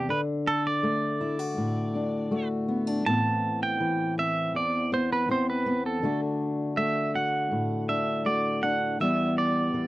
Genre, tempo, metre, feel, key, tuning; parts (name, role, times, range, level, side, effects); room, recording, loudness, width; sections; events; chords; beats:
acoustic folk duo or small band; 81 BPM; 4/4; straight; A4 = 440 Hz
pedal steel guitar; second line; 0.0-9.9 s; G4 to A5; -27 LUFS; right 3 dB
fingerpicked steel-string acoustic guitar; accompaniment; 0.0-9.9 s; E2 to G4; -27 LUFS; left 1 dB
light reverb; dry, close 1970s-style studio recording; -24 LUFS; side -17 dB against mid
0.0-9.9 A section
pedal steel guitar solo 0.0-9.9
0.1 D; 3.1 Amadd9; 6.0 D; 9.0 Em
| 0.09 0.83 1.57 2.32 | 3.06 3.80 4.54 5.29 | 6.03 6.77 7.52 8.26 | 9.00 9.74